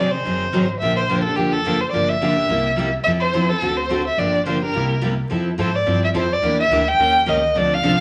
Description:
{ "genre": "acoustic string swing (jazz manouche)", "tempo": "214 BPM", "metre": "4/4", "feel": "swing 58% on 8ths", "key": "F major", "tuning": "A4 = 438 Hz", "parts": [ { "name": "warm violin", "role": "melody", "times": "0.0-8.0 s", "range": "G4 to G5", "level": "-22 LUFS", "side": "equal", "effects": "none" }, { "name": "picked steel-string acoustic guitar", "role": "accompaniment", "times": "0.0-7.9 s", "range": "C3 to Bb4", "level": "-25 LUFS", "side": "equal", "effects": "none" }, { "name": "picked steel-string acoustic guitar", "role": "accompaniment", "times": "0.0-7.9 s", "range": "C3 to Bb4", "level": "-29 LUFS", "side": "equal", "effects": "none" }, { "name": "upright bass", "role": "bass", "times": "0.0-8.0 s", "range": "F1 to Ab2", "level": "-30 LUFS", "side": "equal", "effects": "none" } ], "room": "wet large studio reverb, RT60 0.9 s", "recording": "vinyl crackle", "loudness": "-19 LUFS", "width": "mono", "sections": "0.0-5.3 A section; 5.3-8.0 B section", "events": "none", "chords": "0.0 Ab7; 0.8 Bb69; 1.9 Gm7; 2.5 C7; 3.1 Fmaj7; 3.6 D7; 4.2 Gm7; 4.7 C7; 5.3 Fmaj7; 6.4 Em7b5; 7.0 Eb7" }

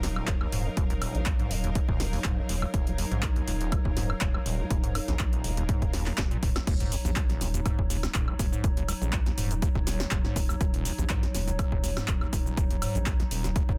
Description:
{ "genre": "acid house", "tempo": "122 BPM", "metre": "4/4", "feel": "swing 53% on 16ths", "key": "Eb minor", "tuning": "A4 = 440 Hz", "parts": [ { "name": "warbly tape-like pad", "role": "sustained chords", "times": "0.0-13.8 s", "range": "Gb3 to Db5", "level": "-40 LUFS", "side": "equal", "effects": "chorus, built-in reverb, sidechain pumping" }, { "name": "acid bass, square", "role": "riff", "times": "0.0-13.7 s", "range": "Eb1 to Bb2", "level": "-36 LUFS", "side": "equal", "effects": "overdrive, sidechain pumping" }, { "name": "round analog bass", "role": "bass", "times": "0.0-13.8 s", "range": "Eb1 to Bb1", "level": "-34 LUFS", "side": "equal", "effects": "sidechain pumping" }, { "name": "punchy analog drum machine", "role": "drums", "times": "0.0-13.7 s", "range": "cabasa, crash cymbal, handclaps, hi-hat, snare drum, woodblock", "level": "-37 LUFS", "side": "equal", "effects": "overdrive" }, { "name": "warm studio string section", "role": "texture", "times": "0.0-6.7 s", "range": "Eb4 to F5", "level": "-43 LUFS", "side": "equal", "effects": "sidechain pumping" }, { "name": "electronic kick drum", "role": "drums", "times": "0.3-13.8 s", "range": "none", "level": "-30 LUFS", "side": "equal", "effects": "overdrive" }, { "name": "sub drop", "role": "sound effects", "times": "6.7-8.6 s", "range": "none", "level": "-40 LUFS", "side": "equal", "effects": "none" } ], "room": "little or no reverb", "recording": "dense, heavily limited modern master", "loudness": "-28 LUFS", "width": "mono", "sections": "0.0-6.7 A section; 6.7-13.8 B section", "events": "filter sweep on acid bass 0.0-6.7; drum fill 6.2-6.7; drop 6.7-13.8; impact 6.7-8.6", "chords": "0.0 Ebm7" }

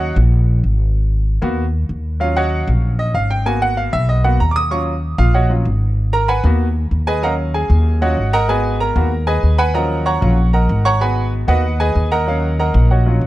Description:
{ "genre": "latin, salsa", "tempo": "191 BPM", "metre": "4/4", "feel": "straight", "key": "Eb minor", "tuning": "A4 = 440 Hz", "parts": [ { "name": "bright grand piano", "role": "accompaniment", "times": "0.0-13.3 s", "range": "F3 to Eb6", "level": "-18 LUFS", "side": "right 1 dB", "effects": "none" }, { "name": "upright bass", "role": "bass", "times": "0.0-13.3 s", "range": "Ab1 to Eb2", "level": "-15 LUFS", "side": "equal", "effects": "none" } ], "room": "small room ambience", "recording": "dry, close 1970s-style studio recording", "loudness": "-14 LUFS", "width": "side -16 dB against mid", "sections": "0.0-13.3 A section", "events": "grand piano solo 0.0-13.3", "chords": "0.0 Ebm7; 1.0 Abm7; 2.2 Ebm7; 3.5 Abm7; 4.7 Ebm7; 6.0 Abm7; 7.2 Ebm7; 8.5 Abm7; 9.8 Ebm7; 11.0 Abm7; 12.3 Ebm7" }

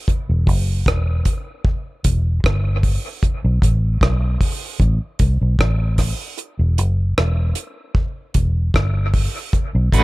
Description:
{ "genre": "dub reggae", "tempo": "76 BPM", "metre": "4/4", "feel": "straight", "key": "E minor", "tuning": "A4 = 440 Hz", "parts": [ { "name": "deep reggae drum kit", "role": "drums", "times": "0.1-10.0 s", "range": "hi-hat, kick drum, rim click", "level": "-19 LUFS", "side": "equal", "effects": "none" }, { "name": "vintage muted fingered electric bass", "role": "bass", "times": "0.3-10.0 s", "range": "E1 to C2", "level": "-17 LUFS", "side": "equal", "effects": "none" }, { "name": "electric guitar at the edge of break-up", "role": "accompaniment", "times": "9.9-10.0 s", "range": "A3 to B4", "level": "-16 LUFS", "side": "right 4 dB", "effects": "tremolo" } ], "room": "studio reverb", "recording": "none", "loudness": "-17 LUFS", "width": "side -20 dB against mid", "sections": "0.0-10.0 A section", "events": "break 0.0-9.5; kick muted 6.4-8.0", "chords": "0.1 Em; 3.2 Asus2; 6.4 Em; 9.5 Bm7" }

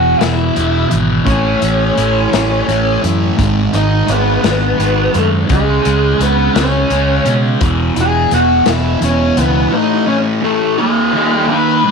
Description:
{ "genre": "psychedelic rock", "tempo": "57 BPM (dotted quarters)", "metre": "6/8", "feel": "straight", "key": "G# phrygian", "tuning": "A4 = 439 Hz", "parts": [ { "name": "octave-fuzz lead guitar", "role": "melody", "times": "0.0-11.9 s", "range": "G3 to D#5", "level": "-16 LUFS", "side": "left 1 dB", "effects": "distortion, slapback echo" }, { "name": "fuzz guitar", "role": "riff", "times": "0.0-11.9 s", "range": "E2 to D#4", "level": "-15 LUFS", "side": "right 1 dB", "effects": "distortion, phaser" }, { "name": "fingered electric bass", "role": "bass", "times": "0.0-9.6 s", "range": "E1 to B2", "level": "-17 LUFS", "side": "right 1 dB", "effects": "none" }, { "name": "crunchy breakbeat drum kit", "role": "drums", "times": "0.2-9.5 s", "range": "hi-hat, kick drum, snare drum", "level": "-19 LUFS", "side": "left 4 dB", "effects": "none" } ], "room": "light reverb", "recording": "1960s-style stereo", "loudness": "-11 LUFS", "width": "side -5 dB against mid", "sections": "0.0-11.9 A section", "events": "none", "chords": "0.0 E; 1.3 A; 3.4 G#m; 5.5 C#5; 7.6 E5; 9.7 A5; 10.8 D#" }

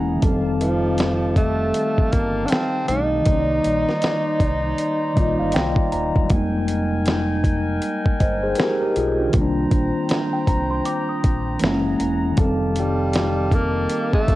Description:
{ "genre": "lo-fi hip hop", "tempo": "79 BPM", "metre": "4/4", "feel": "swing 60% on 16ths", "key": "unclear", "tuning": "A4 = 438 Hz", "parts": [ { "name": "mellow tine electric piano", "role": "accompaniment", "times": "0.0-14.4 s", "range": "Eb3 to Bb5", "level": "-23 LUFS", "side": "left 1 dB", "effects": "slow stereo tremolo, low-pass filter, cassette tape" }, { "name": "warm brass ensemble", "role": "sustained chords", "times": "0.0-14.4 s", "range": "C4 to Bb5", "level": "-27 LUFS", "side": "left 1 dB", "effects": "low-pass filter, cassette tape" }, { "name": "deep dub fingered electric bass", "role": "bass", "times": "0.0-14.4 s", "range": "Eb1 to C2", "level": "-26 LUFS", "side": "equal", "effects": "none" }, { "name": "dusty soul sampler-style drum kit", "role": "drums", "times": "0.2-14.4 s", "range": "hi-hat, kick drum, snare drum", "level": "-21 LUFS", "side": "equal", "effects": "cassette tape" }, { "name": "breathy tenor saxophone", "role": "melody", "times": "0.6-5.9, 12.8-14.4 s", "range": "F3 to Eb4", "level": "-23 LUFS", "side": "right 1 dB", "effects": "low-pass filter, cassette tape" }, { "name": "small celesta", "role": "second line", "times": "10.3-11.6 s", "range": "G5 to Eb6", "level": "-29 LUFS", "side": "right 1 dB", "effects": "low-pass filter, cassette tape, analog delay" } ], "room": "small room ambience", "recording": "home recording on cassette", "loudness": "-18 LUFS", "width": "side -16 dB against mid", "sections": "0.0-14.4 A section", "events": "tine electric piano fill 4.8-6.3", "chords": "0.2 F9; 3.3 Cm9; 6.3 Fm11; 9.3 Cm9; 11.6 F#9; 12.4 F9" }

